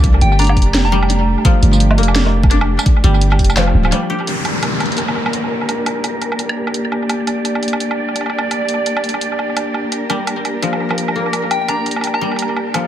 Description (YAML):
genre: half-time drum and bass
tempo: 170 BPM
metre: 4/4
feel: swing 59% on 16ths, half-time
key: G minor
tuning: A4 = 440 Hz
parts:
  - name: warm studio cello section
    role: sustained chords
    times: 0.0-12.9 s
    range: A3 to D5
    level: -20 LUFS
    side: right 1 dB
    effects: vintage 12-bit sampler grit, sidechain pumping, low-pass filter
  - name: koto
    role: arpeggios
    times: 0.0-6.1, 10.1-12.9 s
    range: F3 to G4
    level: -21 LUFS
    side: left 3 dB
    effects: tape echo
  - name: long sustained 808-style bass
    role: bass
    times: 0.0-3.9 s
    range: D1 to C2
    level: -13 LUFS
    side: equal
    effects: tube saturation
  - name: drum and bass drum kit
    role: drums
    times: 0.0-12.8 s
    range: hi-hat, snare drum, tambourine, woodblock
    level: -21 LUFS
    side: right 2 dB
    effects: tape echo
  - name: electronic kick drum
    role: drums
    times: 0.0-3.5 s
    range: none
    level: -13 LUFS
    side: equal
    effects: overdrive
  - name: soft synth bell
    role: melody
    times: 0.2-1.2, 11.5-12.5 s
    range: G5 to Bb5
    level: -22 LUFS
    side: left 1 dB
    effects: chorus, phaser, dub echo
  - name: downlifter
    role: sound effects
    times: 4.3-7.1 s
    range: none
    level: -22 LUFS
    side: left 1 dB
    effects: none
room: moderate spring reverb, RT60 1.4 s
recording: echo-heavy mix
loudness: -14 LUFS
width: side -11 dB against mid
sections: 0.0-4.3 A section; 4.3-12.9 B section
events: drop 0.0-4.3; break 3.9-4.3; filter sweep on cello section 4.3-12.9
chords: 0.0 Gmadd9; 4.3 Gm